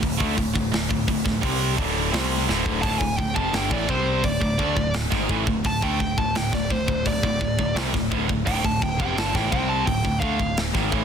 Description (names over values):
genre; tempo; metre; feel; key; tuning
heavy metal; 85 BPM; 4/4; straight; D minor; A4 = 437 Hz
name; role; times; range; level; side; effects
distorted electric guitar; riff; 0.0-11.0 s; D2 to C4; -28 LUFS; left 12 dB; distortion
tight distorted guitar; riff; 0.0-11.0 s; D2 to C4; -27 LUFS; right 11 dB; distortion
growling picked electric bass; bass; 0.0-11.0 s; D1 to D2; -29 LUFS; equal; overdrive
tight metal drum kit; drums; 0.0-11.0 s; hi-hat, kick drum, snare drum; -26 LUFS; equal; none
high-gain lead guitar; melody; 2.8-10.5 s; C5 to A5; -27 LUFS; equal; distortion, digital delay
room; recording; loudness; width
studio ambience; dense, heavily limited modern master; -20 LUFS; side -7 dB against mid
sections
0.0-2.8 A section; 2.8-11.0 B section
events
drum fill 2.5-2.8; lead electric guitar solo 2.8-11.0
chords
0.0 D5; 2.8 Dm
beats
| 0.02 0.72 1.43 2.13 | 2.83 3.54 4.24 4.94 | 5.65 6.35 7.05 7.76 | 8.46 9.16 9.87 10.57